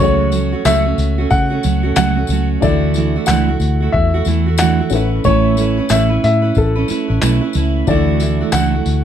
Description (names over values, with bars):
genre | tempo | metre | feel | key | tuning
acoustic pop | 91 BPM | 4/4 | swing 60% on 16ths | A major | A4 = 440 Hz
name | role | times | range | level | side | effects
warm upright piano | melody | 0.0-9.0 s | A4 to F#5 | -19 LUFS | left 3 dB | none
felt-muted upright piano | accompaniment | 0.0-9.0 s | C#4 to E5 | -26 LUFS | left 8 dB | none
picked steel-string acoustic guitar | accompaniment | 0.0-9.0 s | C#3 to B4 | -18 LUFS | right 8 dB | none
vintage muted fingered electric bass | bass | 0.0-9.0 s | A1 to C#3 | -17 LUFS | left 1 dB | none
dusty soul sampler-style drum kit | drums | 0.3-9.0 s | handclaps, kick drum, tambourine | -22 LUFS | left 1 dB | none
tambourine | percussion | 0.3-9.0 s | none | -28 LUFS | left 10 dB | none
room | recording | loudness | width
light reverb | dark, warm production | -13 LUFS | side -9 dB against mid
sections
0.0-9.0 A section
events
none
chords
0.0 F#m/C#; 2.6 Dadd9; 4.9 Aadd9; 7.9 Dadd9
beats
0.65 1.31 1.97 | 2.62 3.28 3.94 4.59 | 5.25 5.91 6.56 7.22 | 7.88 8.53